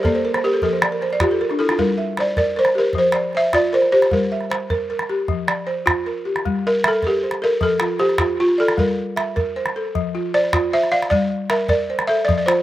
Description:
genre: west african traditional, West African string and xylophone music.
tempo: 103 BPM (dotted quarters).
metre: 12/8.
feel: straight.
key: G dorian.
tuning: A4 = 443 Hz.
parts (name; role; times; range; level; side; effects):
balafon; melody; 0.0-12.6 s; F4 to F5; -18 LUFS; equal; none.
balafon; arpeggios; 0.0-12.6 s; F3 to E5; -22 LUFS; equal; none.
calabash; percussion; 0.0-12.6 s; none; -22 LUFS; equal; none.
room: light reverb.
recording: recorded outdoors, with no room sound.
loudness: -17 LUFS.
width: side -14 dB against mid.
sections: 0.0-6.4 A section; 6.4-12.6 B section.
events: balafon fill 0.0-1.8; balafon solo 6.4-12.6.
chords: 0.0 Gm; 0.6 N.C.; 1.8 Gm; 2.9 F5; 4.1 Gm; 5.3 F5; 6.4 Gm; 7.6 F; 8.8 Gm; 9.9 F; 11.1 Gm.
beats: 0.04 0.62 1.20 | 1.78 2.36 2.94 3.53 | 4.11 4.69 5.28 5.86 | 6.44 7.03 7.61 8.19 | 8.78 9.36 9.94 10.52 | 11.11 11.69 12.27.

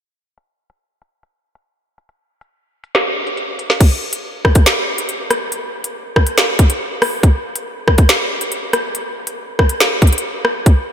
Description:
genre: hip hop.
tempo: 140 BPM.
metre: 4/4.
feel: half-time.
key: none.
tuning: none.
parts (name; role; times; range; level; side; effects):
drill drum kit; drums; 0.4-10.8 s; crash cymbal, finger snaps, hi-hat, kick drum, rim click, snare drum; -13 LUFS; equal; none.
room: moderate cathedral reverb, RT60 4.2 s.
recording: dreamy mix soaked in reverb, low-pass filter.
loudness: -14 LUFS.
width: side -9 dB against mid.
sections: 0.4-3.8 A section; 3.8-10.9 B section.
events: none.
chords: none.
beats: | 0.38 0.81 1.23 1.66 | 2.09 2.52 2.95 3.38 | 3.81 4.23 4.66 5.09 | 5.52 5.95 6.38 6.80 | 7.23 7.66 8.09 8.52 | 8.95 9.38 9.80 10.23 | 10.66.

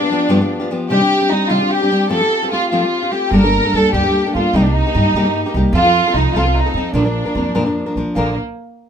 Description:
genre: mexican folk, mariachi.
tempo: 99 BPM (dotted quarters).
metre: 6/8.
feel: straight.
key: Bb major.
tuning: A4 = 440 Hz.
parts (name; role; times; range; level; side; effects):
dark studio violin section; melody; 0.0-8.4 s; Bb3 to Bb4; -17 LUFS; equal; none.
nylon-string guitar; accompaniment; 0.0-8.3 s; G2 to Bb4; -18 LUFS; left 1 dB; none.
upright bass; bass; 3.3-8.4 s; G1 to G2; -19 LUFS; right 2 dB; none.
room: moderate studio ambience, RT60 0.5 s.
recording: minimal, uncompressed stereo recording.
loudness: -13 LUFS.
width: side -8 dB against mid.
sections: 0.0-8.2 A section.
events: none.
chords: 0.0 G7; 0.9 Cmadd9; 2.1 Fadd9; 3.3 Gmadd9; 4.5 Cm7; 5.7 F; 6.9 Bb.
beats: 0.29 | 0.90 1.50 | 2.10 2.71 | 3.32 3.93 | 4.54 5.14 | 5.74 6.34 | 6.95 7.55 | 8.17.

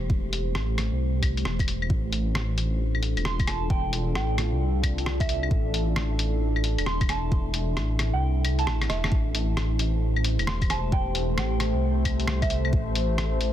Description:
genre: future garage.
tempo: 133 BPM.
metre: 4/4.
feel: swing 64% on 16ths.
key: A minor.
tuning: A4 = 437 Hz.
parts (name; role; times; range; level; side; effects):
deep dark ambient pad; sustained chords; 0.0-13.5 s; A3 to C5; -31 LUFS; equal; chorus, built-in reverb, sidechain pumping.
dark detuned saw bass; bass; 0.0-13.5 s; E1 to C2; -26 LUFS; equal; tube saturation, sidechain pumping.
electronic kick drum; drums; 0.1-12.8 s; none; -26 LUFS; equal; overdrive, small room reverb.
lo-fi sampler-style drum kit; drums; 0.3-13.5 s; claves, hi-hat, rim click; -31 LUFS; left 2 dB; small room reverb, soft clipping on snare.
soft synth bell; melody; 3.3-12.7 s; E5 to C6; -34 LUFS; right 4 dB; chorus, tremolo, tape echo.
room: digital ambience.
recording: dense, heavily limited modern master.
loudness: -23 LUFS.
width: side -11 dB against mid.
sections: 0.0-9.1 A section; 9.1-13.5 B section.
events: kick drops out 8.2-9.1; drum fill 8.8-9.1.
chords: 0.0 Am7; 1.9 F6; 9.1 Am7.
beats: | 0.10 0.55 1.00 1.45 | 1.90 2.35 2.80 3.25 | 3.71 4.16 4.61 5.06 | 5.51 5.96 6.41 6.86 | 7.32 7.77 8.22 8.67 | 9.12 9.57 10.02 10.47 | 10.92 11.38 11.83 12.28 | 12.73 13.18.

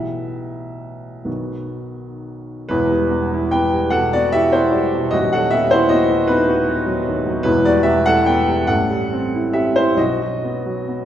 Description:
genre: classical, romantic nocturne for solo piano.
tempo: 40-53 BPM (dotted quarters).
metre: 6/8.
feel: rubato.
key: E minor.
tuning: A4 = 440 Hz.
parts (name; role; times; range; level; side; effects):
warm baby grand piano; solo; 0.0-11.1 s; D#1 to G5; -16 LUFS; equal; none.
room: wet scoring stage reverb, RT60 1.7 s.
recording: heard from further back in the room.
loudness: -15 LUFS.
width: side -10 dB against mid.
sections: 0.0-2.7 A section; 2.7-11.1 B section.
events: none.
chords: 0.0 Em/B; 1.3 B; 2.7 Em; 5.1 B/D#; 7.5 Em; 8.7 Am7; 10.0 B.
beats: 1.26 | 2.69 3.92 | 5.13 6.28 | 7.45 8.69 | 9.98.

